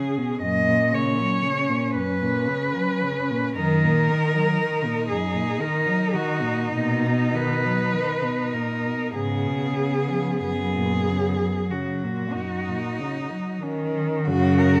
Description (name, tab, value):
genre	classical, lyrical piece for cello ensemble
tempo	45-60 BPM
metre	3/4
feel	rubato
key	F# major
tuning	A4 = 441 Hz
part	warm cello	melody	0.0-14.8 s	D#4 to D#5	-28 LUFS	equal	none
part	warm cello	second line	0.0-14.8 s	F#3 to A#4	-33 LUFS	equal	none
part	warm cello	accompaniment	0.0-14.8 s	F#2 to F#3	-28 LUFS	equal	none
part	warm cello	bass	0.4-14.8 s	F#2 to D#3	-27 LUFS	equal	none
room	moderate recital hall reverb, RT60 1.4 s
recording	close, detailed microphones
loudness	-24 LUFS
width	mono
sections	0.0-14.3 A section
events	none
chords	0.4 F#; 3.6 D#m/F#; 6.7 Bmaj7/A#; 9.1 C#7/G#; 10.4 F#